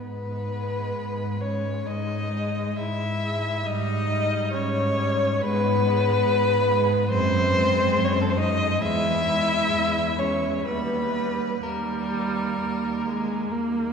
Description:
classical, slow romantic movement for string quartet; 68 BPM; 4/4; uneven beats, rubato; G# minor; A4 = 440 Hz
muted violin; melody; 0.0-13.9 s; A#3 to E4; -31 LUFS; left 5 dB
muted violin; second line; 0.0-13.9 s; A4 to E5; -25 LUFS; left 1 dB
muted cello; bass; 0.0-13.9 s; D#2 to G#2; -28 LUFS; right 2 dB
muted viola; accompaniment; 0.5-13.9 s; G3 to A#3; -30 LUFS; equal
wet church reverb, RT60 4.0 s; recorded in a church or concert hall; -22 LUFS; side -6 dB against mid
0.0-13.9 A section
0.0 G#m; 3.7 D#7/G#; 5.4 G#m; 7.1 G#7/F#; 8.8 E6; 10.7 D#
| 0.02 0.95 1.87 2.78 | 3.67 4.54 5.41 6.26 | 7.12 7.96 8.82 9.72 | 10.66 11.63 12.59 13.52

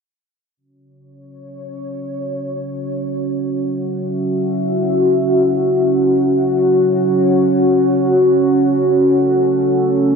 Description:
drum and bass; free time; F# minor; A4 = 441 Hz
deep dark ambient pad; sustained chords; 1.6-10.2 s; C#4 to E5; -14 LUFS; equal; chorus, built-in reverb
moderate plate reverb, RT60 2.6 s; -14 LUFS; side -5 dB against mid
0.6-10.2 A section
0.6 F#5
free time

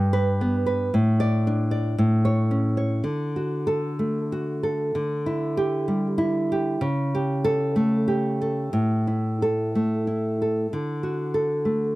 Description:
romantic piece for solo classical guitar; 55-66 BPM; 2/4; rubato; D major; A4 = 441 Hz
nylon-string guitar; solo; 0.0-12.0 s; G2 to D5; -21 LUFS; equal
light reverb; dry, close 1970s-style studio recording; -22 LUFS; side -18 dB against mid
0.0-3.0 A section; 3.0-12.0 B section
0.0 G; 0.9 D5/A; 2.0 A; 3.0 D; 5.0 Em7/D; 6.8 A7/C#; 8.7 A5; 10.7 D
| 0.93 1.99 | 3.04 4.01 | 4.95 5.88 | 6.80 7.76 | 8.74 9.73 | 10.70 11.65

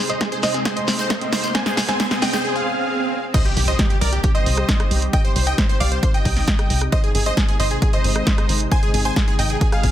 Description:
uplifting trance; 134 BPM; 4/4; straight; C minor; A4 = 440 Hz
supersaw stab; melody; 0.0-9.9 s; G4 to Ab5; -24 LUFS; equal; sidechain pumping, low-pass filter, dub echo
warm baby grand piano; second line; 0.0-9.9 s; G4 to Ab5; -30 LUFS; right 1 dB; sidechain pumping, low-pass filter, digital delay
lush unison pad; sustained chords; 0.0-9.9 s; C3 to C5; -30 LUFS; equal; chorus, sidechain pumping
wide unison pluck; arpeggios; 0.0-2.4 s; C4 to C6; -27 LUFS; left 2 dB; phaser, sidechain pumping, digital delay
riser, swell and impact; sound effects; 0.0-5.1 s; -27 LUFS; right 2 dB
punchy analog drum machine; drums; 0.1-9.9 s; crash cymbal, hi-hat, rim click, snare drum; -24 LUFS; right 1 dB; sidechain pumping on hats, sidechain pumping on cymbals
shekere; percussion; 0.1-2.4 s; -29 LUFS; left 2 dB
electronic kick drum; drums; 0.2-9.9 s; -19 LUFS; equal; high-pass filter on kick
tight sequencer bass; bass; 3.6-9.9 s; Ab1 to C2; -21 LUFS; equal; sidechain pumping
light reverb; dense, heavily limited modern master; -17 LUFS; side -12 dB against mid
0.0-3.3 A section; 3.3-9.9 B section
build-up 0.0-3.3; drum fill 0.0-2.4; riser 0.0-2.4; break 2.4-3.3; swell 2.4-3.3; drop 3.3-9.9; impact 3.3-5.1
0.0 Ab; 3.3 Cm; 6.9 Ab
0.21 0.66 1.10 | 1.55 2.00 2.45 2.90 | 3.34 3.79 4.24 4.69 | 5.13 5.58 6.03 6.48 | 6.92 7.37 7.82 8.27 | 8.71 9.16 9.61

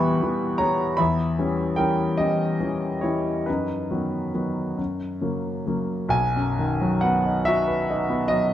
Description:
classical, romantic nocturne for solo piano; 43-54 BPM (dotted quarters); 12/8; rubato; B major; A4 = 439 Hz
warm grand piano; solo; 0.0-8.5 s; B1 to C#6; -21 LUFS; equal
moderate recital hall reverb, RT60 1.8 s; dark, warm production; -21 LUFS; side -11 dB against mid
0.0-6.1 A section; 6.1-8.5 B section
0.0 Em; 1.0 C#m7b5/E; 3.5 B/F#; 4.8 F#; 6.1 B
| 0.99 2.18 3.47 4.78 | 6.13 7.46

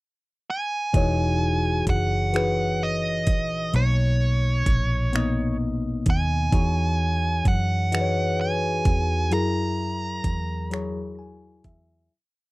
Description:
slow six-eight R&B; 43 BPM (dotted quarters); 6/8; straight; A4 = 441 Hz
nasal lead guitar with a parked wah; melody; 0.5-11.1 s; C#5 to A#5; -28 LUFS; right 2 dB; overdrive, slapback echo
bright tine electric piano; accompaniment; 0.9-12.1 s; B2 to G#5; -26 LUFS; left 2 dB; phaser
vintage muted fingered electric bass; bass; 0.9-12.1 s; E1 to F#2; -25 LUFS; equal
smooth R&B drum kit; drums; 0.9-11.9 s; finger snaps, hi-hat, kick drum; -23 LUFS; equal
little or no reverb; dry, close 1970s-style studio recording; -21 LUFS; side -21 dB against mid
0.0-0.9 pickup bar; 0.9-12.1 verse
fade-out 9.3-12.1; tine electric piano fill 10.7-12.1
0.0 N.C.; 0.9 Emaj13; 3.7 Bmaj9; 6.5 Emaj13; 9.3 F#9
| 0.94 2.34 | 3.73 5.13 | 6.52 7.92 | 9.31 10.71

